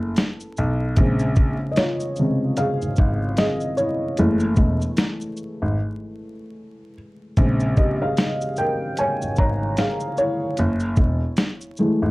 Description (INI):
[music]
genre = lo-fi hip hop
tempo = 75 BPM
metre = 4/4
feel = swing 59% on 16ths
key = unclear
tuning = A4 = 440 Hz
[part]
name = felt-muted upright piano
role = accompaniment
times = 0.0-12.1 s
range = C3 to Bb5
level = -23 LUFS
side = equal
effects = cassette tape, low-pass filter
[part]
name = dark baby grand piano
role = bass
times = 0.0-12.1 s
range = Fb1 to Cb2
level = -23 LUFS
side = equal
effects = none
[part]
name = dusty soul sampler-style drum kit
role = drums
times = 0.2-12.0 s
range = hi-hat, kick drum, shaker, snare drum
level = -20 LUFS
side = equal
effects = vintage 12-bit sampler grit
[sound]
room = light reverb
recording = dark, warm production, vinyl crackle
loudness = -19 LUFS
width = side -21 dB against mid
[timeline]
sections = 0.0-12.1 A section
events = felt piano solo 0.0-12.1; break 5.8-7.4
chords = 0.0 Gbm7; 1.0 Bbm7; 4.2 Gbm7 (rootless); 7.4 Bbm7; 10.6 Gbm7